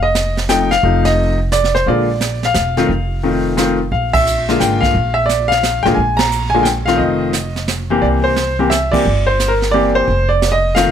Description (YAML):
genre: jazz piano trio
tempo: 175 BPM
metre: 3/4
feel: swing 65% on 8ths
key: F major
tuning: A4 = 440 Hz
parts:
  - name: bright upright piano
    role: melody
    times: 0.0-10.9 s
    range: C3 to Bb5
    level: -14 LUFS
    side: left 1 dB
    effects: none
  - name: upright bass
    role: bass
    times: 0.0-10.9 s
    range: E1 to C2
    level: -19 LUFS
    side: right 1 dB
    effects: none
  - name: jazz brush drum kit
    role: drums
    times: 0.1-10.9 s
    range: brushed snare drum, hi-hat, kick drum, ride cymbal, snare drum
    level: -22 LUFS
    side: right 4 dB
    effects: none
room: little or no reverb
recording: close, detailed microphones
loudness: -13 LUFS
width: side -8 dB against mid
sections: 0.0-10.9 A section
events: band accent 4.1, 6.1, 8.9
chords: 0.0 F7; 1.9 Bb; 2.9 F7; 3.9 Bb7; 7.0 F7; 8.0 C7; 10.1 F7(no3)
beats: 0.15 0.50 | 0.84 1.18 1.52 | 1.87 2.21 2.55 | 2.89 3.23 3.58 | 3.92 4.26 4.61 | 4.95 5.29 5.63 | 5.97 6.32 6.66 | 7.00 7.34 7.69 | 8.03 8.37 8.71 | 9.05 9.40 9.74 | 10.08 10.42 10.76